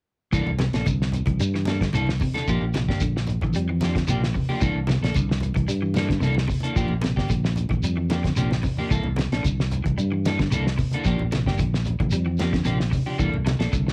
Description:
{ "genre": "afrobeat", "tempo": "112 BPM", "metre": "4/4", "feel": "straight", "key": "C mixolydian", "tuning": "A4 = 436 Hz", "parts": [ { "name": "electric guitar at the edge of break-up", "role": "arpeggios", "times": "0.3-13.9 s", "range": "C3 to G3", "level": "-31 LUFS", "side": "equal", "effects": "analog chorus, cassette tape" }, { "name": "clean electric guitar", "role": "stabs", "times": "0.3-13.9 s", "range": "E3 to A4", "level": "-33 LUFS", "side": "equal", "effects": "analog chorus, cassette tape" }, { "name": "fingered electric bass", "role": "bass", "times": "0.3-13.9 s", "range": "G1 to G2", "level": "-27 LUFS", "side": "equal", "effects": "none" }, { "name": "cloth-damped thuddy drum kit", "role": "drums", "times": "0.3-13.9 s", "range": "hi-hat, kick drum, snare drum", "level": "-29 LUFS", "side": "equal", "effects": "cassette tape" }, { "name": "shekere", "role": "percussion", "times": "0.3-13.9 s", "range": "none", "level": "-34 LUFS", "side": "equal", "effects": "none" }, { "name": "congas", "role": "percussion", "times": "0.5-13.9 s", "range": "none", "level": "-34 LUFS", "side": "equal", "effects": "none" } ], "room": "light reverb", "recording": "home recording on cassette", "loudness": "-24 LUFS", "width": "mono", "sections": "0.3-13.9 A section", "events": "drum fill 8.2-8.9", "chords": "0.3 C13; 2.5 Bb6; 4.6 C13; 6.8 Bb6; 8.9 C13; 11.0 Bb6; 13.2 C13" }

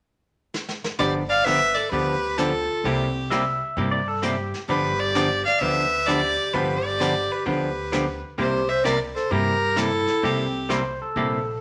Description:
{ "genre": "country, western swing", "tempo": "130 BPM", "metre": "4/4", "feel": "swing 67% on 8ths", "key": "G major", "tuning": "A4 = 440 Hz", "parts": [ { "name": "vintage brush drum kit", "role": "drums", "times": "0.5-11.6 s", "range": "brushed snare drum, hi-hat, kick drum, snare drum", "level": "-38 LUFS", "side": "equal", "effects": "none" }, { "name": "clear fiddle", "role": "melody", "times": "1.0-10.7 s", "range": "G4 to F5", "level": "-26 LUFS", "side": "equal", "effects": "none" }, { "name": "warm clarinet", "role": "second line", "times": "1.0-10.7 s", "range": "C4 to D5", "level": "-30 LUFS", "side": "equal", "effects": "none" }, { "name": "archtop guitar, miked and amplified", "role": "accompaniment", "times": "1.0-11.4 s", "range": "C3 to G4", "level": "-28 LUFS", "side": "equal", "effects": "none" }, { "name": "upright bass", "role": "bass", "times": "1.0-11.6 s", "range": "G1 to G2", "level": "-34 LUFS", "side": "equal", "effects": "none" }, { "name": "pedal steel guitar", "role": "second line", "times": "3.3-4.6, 10.7-11.6 s", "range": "G4 to E5", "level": "-29 LUFS", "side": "equal", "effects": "none" } ], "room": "wet studio reverb, RT60 0.8 s", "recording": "none", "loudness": "-23 LUFS", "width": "mono", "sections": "1.0-11.6 A section", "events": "drum fill 0.5-1.0", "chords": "0.0 N.C.; 1.0 G7; 2.8 C7; 4.7 G7; 8.4 C7" }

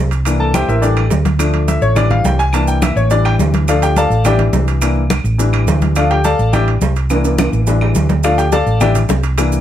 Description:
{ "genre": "latin, salsa", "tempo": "210 BPM", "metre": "4/4", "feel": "straight", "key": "unclear", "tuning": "A4 = 440 Hz", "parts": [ { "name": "hollow-body short-scale fingered electric bass", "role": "bass", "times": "0.0-9.6 s", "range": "A1 to D2", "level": "-15 LUFS", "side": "right 1 dB", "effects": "none" }, { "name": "congas", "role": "percussion", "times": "0.1-9.6 s", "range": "none", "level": "-20 LUFS", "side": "left 1 dB", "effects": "none" }, { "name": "maracas", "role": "percussion", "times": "0.1-9.6 s", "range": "none", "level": "-29 LUFS", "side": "right 6 dB", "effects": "none" }, { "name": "timbales", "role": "percussion", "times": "0.1-9.5 s", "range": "none", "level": "-24 LUFS", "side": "right 7 dB", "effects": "none" }, { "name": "clear baby grand piano", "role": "accompaniment", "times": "0.3-9.6 s", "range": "E3 to A5", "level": "-16 LUFS", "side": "left 3 dB", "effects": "none" }, { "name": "claves", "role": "percussion", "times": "0.3-9.5 s", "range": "none", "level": "-29 LUFS", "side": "right 1 dB", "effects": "none" }, { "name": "bongos", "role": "percussion", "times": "8.2-9.6 s", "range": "none", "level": "-22 LUFS", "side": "left 6 dB", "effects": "none" } ], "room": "light reverb", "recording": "none", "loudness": "-12 LUFS", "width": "side -11 dB against mid", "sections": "0.0-9.6 A section", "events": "grand piano solo 0.0-9.6; drum fill 7.1-8.2", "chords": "0.3 C7; 0.8 A7sus4; 1.4 Dm; 2.0 A7sus4; 2.5 C7; 3.1 A7sus4; 3.7 Dm; 4.2 A7sus4; 4.8 C7; 5.4 A7sus4; 6.0 Dm; 6.5 A7sus4; 7.1 C7; 7.7 A7sus4; 8.2 Dm; 8.8 A7sus4" }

